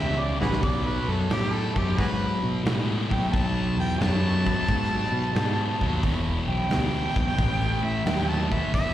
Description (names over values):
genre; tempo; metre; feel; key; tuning
blues rock power trio and southern rock; 89 BPM; 4/4; swing 67% on 8ths; unclear; A4 = 438 Hz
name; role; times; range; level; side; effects
warm harmonica; melody; 0.0-8.9 s; F#4 to A5; -30 LUFS; equal; overdrive, slapback echo
thick fuzz guitar; riff; 0.0-8.9 s; E2 to G#3; -28 LUFS; left 1 dB; distortion, slapback echo
fuzz fingered electric bass; bass; 0.0-8.9 s; E1 to B2; -27 LUFS; equal; overdrive
big rock drum kit; drums; 0.4-8.9 s; hi-hat, kick drum, snare drum; -29 LUFS; equal; none
room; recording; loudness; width
light reverb; live gig heard through the venue's PA, recital hall reverb; -22 LUFS; side -12 dB against mid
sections
0.0-8.9 A section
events
drum fill 0.0-0.6; harmonica solo 0.0-8.9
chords
0.0 E5; 0.6 B7(no3); 6.0 E5; 7.4 A5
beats
| 0.63 1.31 1.98 2.66 | 3.33 4.01 4.69 5.36 | 6.04 6.71 7.39 8.06 | 8.74